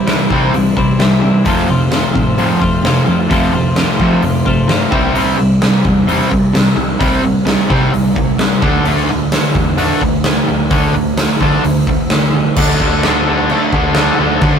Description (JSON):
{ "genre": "quiet-loud alternative rock", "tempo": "130 BPM", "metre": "4/4", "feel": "straight", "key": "unclear", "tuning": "A4 = 439 Hz", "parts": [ { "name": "twelve-string electric guitar", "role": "arpeggios", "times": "0.0-5.2 s", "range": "F2 to F4", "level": "-18 LUFS", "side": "left 3 dB", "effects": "tape echo" }, { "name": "overdriven semi-hollow guitar", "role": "riff", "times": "0.0-14.6 s", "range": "F2 to D4", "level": "-14 LUFS", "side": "right 1 dB", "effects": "none" }, { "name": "hollow-body short-scale picked electric bass", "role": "bass", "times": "0.0-14.6 s", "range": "C2 to F3", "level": "-20 LUFS", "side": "equal", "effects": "none" }, { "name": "huge arena drum kit", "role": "drums", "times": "0.1-14.5 s", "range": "crash cymbal, hi-hat, kick drum, snare drum", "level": "-16 LUFS", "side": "equal", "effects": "none" } ], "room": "moderate booth ambience, RT60 0.2 s", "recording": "rough rehearsal-room recording, tube saturation", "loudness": "-11 LUFS", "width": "side -7 dB against mid", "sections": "0.0-12.6 A section; 12.6-14.6 B section", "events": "none", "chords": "0.0 C; 1.5 F; 4.9 C; 8.6 D5" }